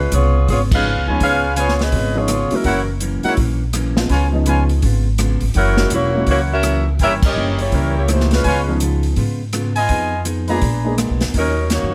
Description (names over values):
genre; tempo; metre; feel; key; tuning
jazz, big band swing; 166 BPM; 4/4; swing 63% on 8ths; Db mixolydian; A4 = 444 Hz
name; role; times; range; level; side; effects
warm saxophone section; melody; 0.0-2.9, 5.6-8.8, 11.4-11.9 s; Gb3 to F5; -22 LUFS; equal; none
vintage hollow-body jazz guitar; accompaniment; 0.0-11.9 s; Gb2 to Ab4; -28 LUFS; equal; none
upright bass; bass; 0.0-11.9 s; Fb1 to Ab2; -21 LUFS; equal; none
swinging big-band drum kit; drums; 0.1-11.8 s; crash cymbal, hi-hat, kick drum, rim click, snare drum; -25 LUFS; equal; none
warm upright piano; accompaniment; 0.7-11.9 s; F3 to Ab4; -26 LUFS; equal; none
mellow trumpet section; stabs; 1.1-11.0 s; Fb4 to Bb5; -25 LUFS; equal; none
room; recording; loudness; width
little or no reverb; close, detailed microphones; -17 LUFS; mono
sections
0.0-11.9 A section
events
band accent 0.7, 7.2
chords
0.0 Db7; 2.7 Gb7; 4.1 Db7; 5.5 Gb7; 7.0 Gdim7; 8.4 Db7; 9.9 Fm7b5; 10.6 Bb7b9; 11.3 Ebm7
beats
0.12 0.48 0.85 | 1.21 1.57 1.93 2.29 | 2.66 3.02 3.38 3.74 | 4.10 4.46 4.83 5.19 | 5.55 5.91 6.27 6.63 | 7.00 7.36 7.72 8.08 | 8.44 8.81 9.17 9.53 | 9.89 10.25 10.62 10.98 | 11.34 11.70